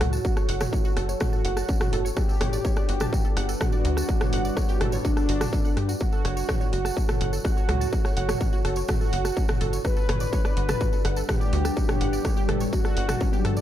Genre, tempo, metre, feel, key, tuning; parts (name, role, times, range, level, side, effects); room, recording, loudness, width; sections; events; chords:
melodic techno; 125 BPM; 4/4; straight; A4 = 440 Hz
mellow synth brass; melody; 0.0-13.6 s; D4 to B4; -31 LUFS; right 2 dB; chorus, sidechain pumping, tape echo
deep dark ambient pad; sustained chords; 0.0-13.6 s; G3 to D5; -33 LUFS; left 2 dB; chorus, built-in reverb, sidechain pumping
wide unison pluck; arpeggios; 0.0-13.6 s; C#4 to A6; -34 LUFS; right 1 dB; sidechain pumping, dub echo
tight sequencer bass; bass; 0.0-13.6 s; F#1 to G2; -27 LUFS; equal; tube saturation, sidechain pumping
techno drum kit; drums; 0.0-13.6 s; hi-hat, rim click, toms; -30 LUFS; equal; sidechain pumping on hats, sidechain pumping on toms, sidechain pumping on cymbals
tambourine; percussion; 0.1-13.6 s; -41 LUFS; right 3 dB
electronic kick drum; drums; 0.2-13.3 s; -25 LUFS; equal; distortion
little or no reverb; -22 LUFS; side -12 dB against mid
0.0-13.6 A section
drum fill 13.3
0.0 F#m; 2.2 G; 6.0 F#m; 9.8 G